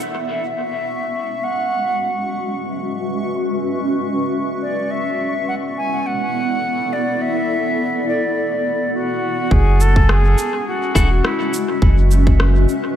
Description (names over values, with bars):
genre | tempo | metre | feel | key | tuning
ambient dub | 104 BPM | 4/4 | swing 56% on 16ths | F# minor | A4 = 439 Hz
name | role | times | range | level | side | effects
granular cloud pad | sustained chords | 0.0-13.0 s | G#3 to F#5 | -22 LUFS | equal | built-in reverb
electronic cabasa and rim click | drums | 0.0-0.1, 9.8-12.8 s | none | -26 LUFS | left 1 dB | studio reverb, dub echo
bubbling stepped-filter texture | texture | 0.0-9.5 s | E5 to C#6 | -31 LUFS | left 1 dB | chorus, built-in reverb
silver concert flute | melody | 0.3-11.7 s | E4 to G#5 | -22 LUFS | equal | dub echo
warm sub bass | bass | 9.5-12.7 s | E1 to F#1 | -13 LUFS | equal | none
electronic kick drum | drums | 9.5-12.4 s | none | -15 LUFS | equal | studio reverb
clean electric guitar | stabs | 11.0-11.1 s | E4 to A4 | -29 LUFS | left 3 dB | dub echo
room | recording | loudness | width
moderate echo chamber reverb, RT60 1.8 s, digital ambience | none | -16 LUFS | side -10 dB against mid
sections
0.3-9.5 A section; 9.5-13.0 B section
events
break 0.0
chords
0.3 F#5; 4.9 E7sus4; 9.5 F#7(no3)